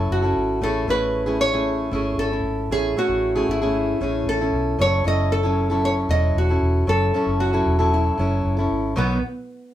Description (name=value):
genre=pop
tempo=115 BPM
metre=4/4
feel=straight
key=unclear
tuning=A4 = 440 Hz
part: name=nylon-string guitar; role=melody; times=0.0-9.2 s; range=B3 to D#5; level=-24 LUFS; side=equal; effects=none
part: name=fingerpicked steel-string acoustic guitar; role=accompaniment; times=0.0-9.2 s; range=B2 to B4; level=-23 LUFS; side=equal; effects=none
part: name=vintage muted fingered electric bass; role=bass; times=0.0-9.2 s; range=E1 to B1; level=-24 LUFS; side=equal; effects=none
room=moderate studio reverb, RT60 0.6 s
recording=band playing live in one room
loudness=-19 LUFS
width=side -12 dB against mid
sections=0.0-9.0 A section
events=none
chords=0.0 F#m7; 0.6 Amaj7; 4.8 F#m7; 9.0 B